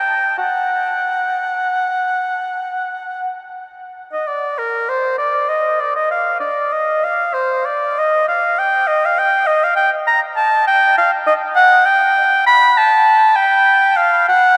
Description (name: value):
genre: classical, baroque-style fantasia for unaccompanied oboe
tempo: 60-67 BPM (dotted quarters)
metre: 12/8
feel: rubato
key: unclear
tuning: A4 = 438 Hz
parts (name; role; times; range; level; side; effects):
- clear oboe; solo; 0.0-14.6 s; Bb4 to B5; -15 LUFS; equal; none
room: wet huge ambient reverb, RT60 8.2 s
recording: in a vast, echoing space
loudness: -15 LUFS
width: mono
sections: 0.0-4.3 A section; 4.3-14.6 B section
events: none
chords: none